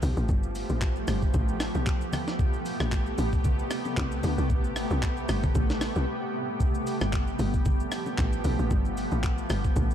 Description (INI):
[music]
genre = amapiano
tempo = 114 BPM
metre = 4/4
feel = swing 55% on 16ths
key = unclear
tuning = A4 = 439 Hz
[part]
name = granular cloud pad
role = sustained chords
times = 0.0-9.9 s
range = C3 to G4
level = -31 LUFS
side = equal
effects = built-in reverb
[part]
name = tight log drum bass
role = bass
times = 0.0-9.9 s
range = G1 to D2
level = -29 LUFS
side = equal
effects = none
[part]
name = jungle sampler-style drum kit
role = drums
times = 0.0-9.9 s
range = handclaps, hi-hat, kick drum, rim click, shaker, snare drum, toms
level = -28 LUFS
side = equal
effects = none
[part]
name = bongos and congas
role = percussion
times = 0.0-9.9 s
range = none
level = -36 LUFS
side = left 2 dB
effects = none
[part]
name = downlifter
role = sound effects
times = 0.0-2.4 s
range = none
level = -51 LUFS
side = left 1 dB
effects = none
[sound]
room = digital ambience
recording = dark, warm production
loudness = -25 LUFS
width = side -10 dB against mid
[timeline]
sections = 0.0-9.9 A section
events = break 6.1-6.6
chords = 0.0 G9; 2.4 Am9; 6.6 G9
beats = | 0.29 0.82 1.34 1.87 | 2.40 2.92 3.45 3.97 | 4.50 5.03 5.55 6.08 | 6.61 7.13 7.66 8.18 | 8.71 9.24 9.76